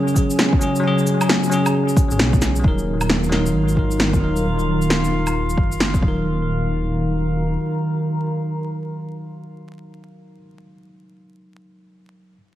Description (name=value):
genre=future garage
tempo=133 BPM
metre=4/4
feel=swing 62% on 16ths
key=Eb minor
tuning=A4 = 440 Hz
part: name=bell-like tine electric piano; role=accompaniment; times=0.0-12.4 s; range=Gb3 to Bb4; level=-24 LUFS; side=left 1 dB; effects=vintage 12-bit sampler grit, sidechain pumping, analog delay
part: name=warbly tape-like pad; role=sustained chords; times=0.0-10.6 s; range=Db3 to Bb5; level=-23 LUFS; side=right 1 dB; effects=chorus, built-in reverb, sidechain pumping
part: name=electronic shaker, cabasa, snare drum and woodblock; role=drums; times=0.1-6.0 s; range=none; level=-21 LUFS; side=equal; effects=overdrive
part: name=electronic kick drum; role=drums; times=0.2-6.1 s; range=none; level=-18 LUFS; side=equal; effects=overdrive
part: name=dark detuned saw bass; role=bass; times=2.1-7.6 s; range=Eb1 to Cb2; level=-23 LUFS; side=equal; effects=sidechain pumping
part: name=drifting glass-harmonics texture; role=texture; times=3.3-6.3 s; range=F4 to F5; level=-30 LUFS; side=equal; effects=chorus, built-in reverb
room=moderate echo chamber reverb, RT60 1.4 s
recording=echo-heavy mix, vinyl crackle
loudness=-17 LUFS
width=side -13 dB against mid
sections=0.0-2.6 A section; 2.6-6.3 B section; 6.3-9.9 C section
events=filter sweep on detuned saw bass 2.6-6.3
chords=0.0 Dbsus4; 2.6 Ebm